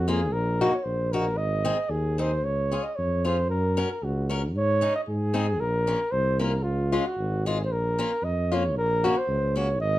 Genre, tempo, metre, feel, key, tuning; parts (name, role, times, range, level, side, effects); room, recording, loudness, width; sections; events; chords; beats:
alpine folk; 114 BPM; 2/4; swing 54% on 8ths; Db major; A4 = 440 Hz
mellow flugelhorn; melody; 0.0-10.0 s; F4 to Eb5; -27 LUFS; right 1 dB
mellow tuba; bass; 0.0-10.0 s; Ab1 to Ab2; -27 LUFS; equal
picked acoustic archtop guitar; accompaniment; 0.1-9.7 s; Ab3 to Bb4; -28 LUFS; left 3 dB
light reverb; dark, warm production; -23 LUFS; side -15 dB against mid
0.0-10.0 A section
0.3 Ebm/Bb; 1.4 Ab; 2.4 Db; 3.5 Gb; 4.5 Absus4; 5.1 Ab; 5.6 Bbm; 6.6 Db; 7.7 Bbm; 8.8 Gb/Bb
| 0.34 0.85 | 1.38 1.90 | 2.44 2.97 | 3.50 4.02 | 4.54 5.07 | 5.59 6.12 | 6.65 7.18 | 7.70 8.23 | 8.76 9.28 | 9.80